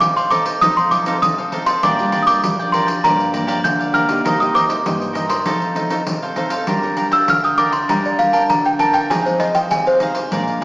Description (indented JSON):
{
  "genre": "samba and choro",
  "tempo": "99 BPM",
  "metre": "4/4",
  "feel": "straight",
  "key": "G minor from 6.7 s",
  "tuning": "A4 = 440 Hz",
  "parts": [
    { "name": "small celesta", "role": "melody", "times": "0.0-10.0 s", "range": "C5 to G6", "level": "-16 LUFS", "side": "equal", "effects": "none" },
    { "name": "cavaquinho", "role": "accompaniment", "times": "0.0-10.6 s", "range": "D4 to G5", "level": "-21 LUFS", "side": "right 1 dB", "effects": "none" },
    { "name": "nylon-string guitar", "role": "accompaniment", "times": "0.0-10.6 s", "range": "G2 to Bb4", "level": "-24 LUFS", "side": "equal", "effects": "none" },
    { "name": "pandeiro", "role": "percussion", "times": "0.0-10.6 s", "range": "none", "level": "-25 LUFS", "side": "equal", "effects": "none" }
  ],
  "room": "wet recital hall reverb, RT60 1.3 s",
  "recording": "recorded in a church or concert hall, small speaker sound",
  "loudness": "-14 LUFS",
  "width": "side -22 dB against mid",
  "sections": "0.0-6.7 A section; 6.7-10.6 B section",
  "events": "celesta solo 6.7-10.6",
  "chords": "0.0 F7; 1.8 Bb6; 3.0 Gm7; 4.3 Cm7; 5.5 F7; 6.7 Gm7; 9.1 Fm7"
}